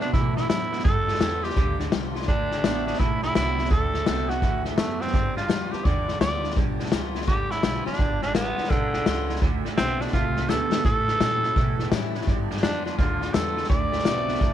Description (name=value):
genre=rockabilly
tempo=168 BPM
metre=4/4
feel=swing 64% on 8ths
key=unclear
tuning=A4 = 440 Hz
part: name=raspy tenor saxophone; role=melody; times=0.0-14.5 s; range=D3 to D5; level=-27 LUFS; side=right 1 dB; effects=none
part: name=picked steel-string acoustic guitar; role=accompaniment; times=0.0-14.5 s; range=E2 to F#4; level=-32 LUFS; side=left 10 dB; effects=none
part: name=electric guitar through a small old amp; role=riff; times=0.0-14.5 s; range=G2 to B3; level=-32 LUFS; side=right 17 dB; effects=analog chorus
part: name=upright bass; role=bass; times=0.0-14.5 s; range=G1 to C3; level=-31 LUFS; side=right 1 dB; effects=none
part: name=vintage drum kit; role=drums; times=0.0-14.5 s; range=hi-hat, kick drum, snare drum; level=-25 LUFS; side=left 1 dB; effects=none
room=small room ambience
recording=1960s-style stereo with parts hard left and right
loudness=-22 LUFS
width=side -11 dB against mid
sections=0.0-14.5 A section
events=drum fill 10.5-10.8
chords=0.0 D7; 0.9 G7; 2.3 D7; 5.1 G7; 9.4 D7; 10.8 A7; 12.3 G7; 13.7 D7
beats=0.14 0.49 | 0.85 1.21 1.57 1.93 | 2.28 2.64 3.00 3.36 | 3.71 4.07 4.43 4.78 | 5.14 5.50 5.86 6.21 | 6.57 6.93 7.28 7.64 | 8.00 8.35 8.71 9.07 | 9.42 9.78 10.13 10.49 | 10.85 11.21 11.56 11.92 | 12.27 12.63 12.99 13.34 | 13.70 14.06 14.41